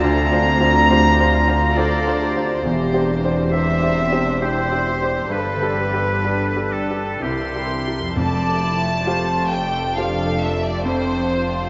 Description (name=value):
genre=cinematic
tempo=67 BPM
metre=3/4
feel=rubato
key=F major from 8.2 s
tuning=A4 = 440 Hz
part: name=clear studio violin section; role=melody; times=0.0-11.7 s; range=E4 to C6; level=-30 LUFS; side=equal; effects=none
part: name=bright oboe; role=second line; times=0.0-8.2 s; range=G4 to Bb5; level=-25 LUFS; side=equal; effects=none
part: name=warm symphonic violin section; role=second line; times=0.0-11.7 s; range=A3 to Bb5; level=-29 LUFS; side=equal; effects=none
part: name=bright baby grand piano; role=accompaniment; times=0.0-11.7 s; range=C2 to C5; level=-27 LUFS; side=equal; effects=none
part: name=warm symphonic viola section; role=accompaniment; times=0.0-11.7 s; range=C4 to D5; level=-30 LUFS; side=equal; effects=none
part: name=concert harp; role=arpeggios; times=0.0-11.7 s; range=F2 to D6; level=-30 LUFS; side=equal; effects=none
part: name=rich symphonic cello section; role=bass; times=0.0-11.7 s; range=D2 to C3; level=-28 LUFS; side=equal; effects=none
part: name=warm symphonic double bass section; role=bass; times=0.0-11.7 s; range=E1 to D2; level=-28 LUFS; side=equal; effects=none
part: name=timpani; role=percussion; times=8.2-9.5 s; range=F2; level=-32 LUFS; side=equal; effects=none
room=wet cathedral reverb, RT60 5.6 s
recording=in a vast, echoing space, nothing above 7.6 kHz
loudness=-19 LUFS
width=mono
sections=0.0-8.2 A section; 8.2-11.7 B section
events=none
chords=0.0 Bbadd9/D; 2.6 Cadd9/E; 5.3 Gadd9; 7.2 C7; 8.2 Fadd9